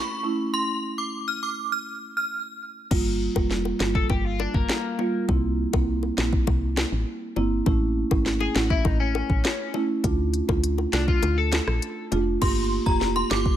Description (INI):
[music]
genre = dancehall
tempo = 101 BPM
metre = 4/4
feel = straight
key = G minor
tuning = A4 = 440 Hz
[part]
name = synth chime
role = melody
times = 0.0-2.3, 12.4-13.4 s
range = Bb5 to F6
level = -27 LUFS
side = right 1 dB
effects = ensemble chorus, phaser, ping-pong delay
[part]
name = marimba with medium mallets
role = accompaniment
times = 0.2-13.6 s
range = G3 to G4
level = -27 LUFS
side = right 3 dB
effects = none
[part]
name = woody FM bass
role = bass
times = 2.9-13.6 s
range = F1 to D2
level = -26 LUFS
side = equal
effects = none
[part]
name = afro-pop drum kit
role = drums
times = 2.9-13.6 s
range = crash cymbal, hi-hat, kick drum, rim click, snare drum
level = -25 LUFS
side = equal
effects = none
[part]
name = bongos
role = percussion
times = 2.9-13.4 s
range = none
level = -33 LUFS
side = left 9 dB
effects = none
[part]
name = twelve-string electric guitar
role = arpeggios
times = 4.0-12.2 s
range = Bb3 to A4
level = -29 LUFS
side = left 8 dB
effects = lush chorus
[sound]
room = digital ambience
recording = none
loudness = -22 LUFS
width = side -11 dB against mid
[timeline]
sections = 0.0-2.9 A section; 2.9-12.4 B section; 12.4-13.6 C section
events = drums muted 0.5-2.9; kick muted 11.2-12.4; hi-hats muted 12.4-13.6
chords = 0.0 A; 0.5 N.C.; 2.9 Gm7; 5.3 C7; 7.7 A; 10.0 Dm; 12.4 Gm7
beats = | 0.54 1.13 1.72 2.32 | 2.91 3.51 4.10 4.69 | 5.29 5.88 6.48 7.07 | 7.66 8.26 8.85 9.45 | 10.04 10.63 11.23 11.82 | 12.42 13.01